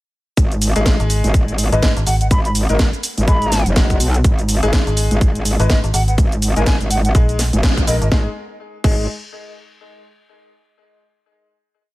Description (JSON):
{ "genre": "bass house", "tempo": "124 BPM", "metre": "4/4", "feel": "swing 59% on 16ths", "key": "G# minor", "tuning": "A4 = 444 Hz", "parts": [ { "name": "metallic wobble bass", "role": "bass", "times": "0.4-9.1 s", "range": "F#1 to B1", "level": "-18 LUFS", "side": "equal", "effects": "chorus, overdrive, sidechain pumping" }, { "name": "electronic kick drum", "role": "drums", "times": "0.4-9.0 s", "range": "none", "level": "-15 LUFS", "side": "equal", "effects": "small room ambience" }, { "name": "garage drum kit", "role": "drums", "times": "0.4-9.0 s", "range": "cabasa, crash cymbal, hi-hat, snare drum", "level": "-22 LUFS", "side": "equal", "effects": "small room ambience" }, { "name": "clear concert grand piano", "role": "stabs", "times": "0.8-9.0 s", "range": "G#3 to B4", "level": "-25 LUFS", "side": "left 3 dB", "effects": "sidechain pumping, tape echo" }, { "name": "metallic FM bass", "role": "bass", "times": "1.0-8.1 s", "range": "G#1 to A#1", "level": "-17 LUFS", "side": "equal", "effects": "overdrive, sidechain pumping" }, { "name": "mellow silver concert flute", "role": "melody", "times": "1.7-8.1 s", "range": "D#5 to B5", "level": "-24 LUFS", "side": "equal", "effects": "vintage 12-bit sampler grit, tape echo" } ], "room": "little or no reverb", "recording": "none", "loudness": "-14 LUFS", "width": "side -18 dB against mid", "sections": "0.4-8.1 drop; 8.1-10.1 final chord", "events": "drop 0.4-8.1; band accent 7.6", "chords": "0.4 G#5" }